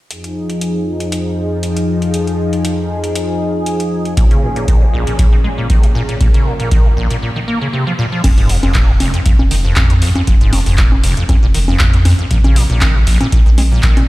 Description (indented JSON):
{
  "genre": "acid house",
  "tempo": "118 BPM",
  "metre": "4/4",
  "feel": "swing 54% on 16ths",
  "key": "F minor",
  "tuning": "A4 = 440 Hz",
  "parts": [
    { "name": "warm analog pad", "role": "sustained chords", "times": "0.1-7.2 s", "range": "F2 to Bb4", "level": "-18 LUFS", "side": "left 1 dB", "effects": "chorus, sidechain pumping" },
    { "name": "booming analog drum machine", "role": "drums", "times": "0.1-14.1 s", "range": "congas, crash cymbal, handclaps, hi-hat", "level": "-20 LUFS", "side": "equal", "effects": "none" },
    { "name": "acid bass, square", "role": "riff", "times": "4.2-14.0 s", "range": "F1 to Bb3", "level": "-18 LUFS", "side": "equal", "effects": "wide subtle chorus, tape echo" },
    { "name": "electronic kick drum", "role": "drums", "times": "4.2-13.9 s", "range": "none", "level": "-12 LUFS", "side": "equal", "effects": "none" },
    { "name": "round analog bass", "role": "bass", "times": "8.2-14.1 s", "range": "F1 to Bb2", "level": "-14 LUFS", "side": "equal", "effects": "tube saturation, sidechain pumping" }
  ],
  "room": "light reverb",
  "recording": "played on a big sound system in a bare room, stone room reverb",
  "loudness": "-11 LUFS",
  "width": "side -18 dB against mid",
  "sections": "0.1-8.2 A section; 8.2-14.1 B section",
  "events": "break 7.2-8.2",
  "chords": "0.1 Fm7; 4.2 Bbm7; 8.2 N.C.",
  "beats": "| 0.10 0.61 1.12 1.63 | 2.14 2.65 3.16 3.66 | 4.17 4.68 5.19 5.70 | 6.21 6.71 7.22 7.73 | 8.24 8.75 9.26 9.77 | 10.27 10.78 11.29 11.80 | 12.31 12.82 13.32 13.83"
}